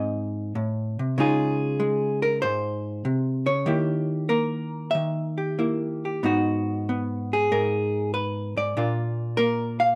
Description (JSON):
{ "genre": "solo jazz", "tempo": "96 BPM", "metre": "4/4", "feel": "swing 69% on 8ths, rubato", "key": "Eb minor", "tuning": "A4 = 440 Hz", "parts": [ { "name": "hollow-body jazz guitar", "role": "solo", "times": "0.0-10.0 s", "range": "Ab2 to F5", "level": "-25 LUFS", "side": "equal", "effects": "none" } ], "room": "light reverb", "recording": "dark, warm production", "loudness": "-25 LUFS", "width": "mono", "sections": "0.0-10.0 A section", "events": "none", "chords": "0.0 Ab7b9; 1.2 Dbmaj9; 3.7 Eb7b9; 6.2 Abm9; 8.8 Bb" }